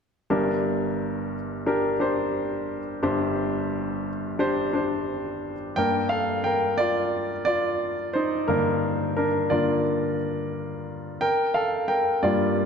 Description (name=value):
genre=pop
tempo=88 BPM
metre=4/4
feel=straight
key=G minor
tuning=A4 = 441 Hz
part: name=clear baby grand piano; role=accompaniment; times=0.3-12.7 s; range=G1 to G5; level=-23 LUFS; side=equal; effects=none
room=wet concert hall reverb, RT60 1.9 s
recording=none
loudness=-23 LUFS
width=side -6 dB against mid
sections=0.3-5.8 A section; 5.8-12.7 B section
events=grand piano solo 5.8-12.7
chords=0.3 Gm; 11.2 Gm9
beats=| 0.30 0.98 1.67 2.35 | 3.03 3.72 4.40 5.08 | 5.76 6.45 7.13 7.81 | 8.49 9.17 9.86 10.54 | 11.22 11.90 12.58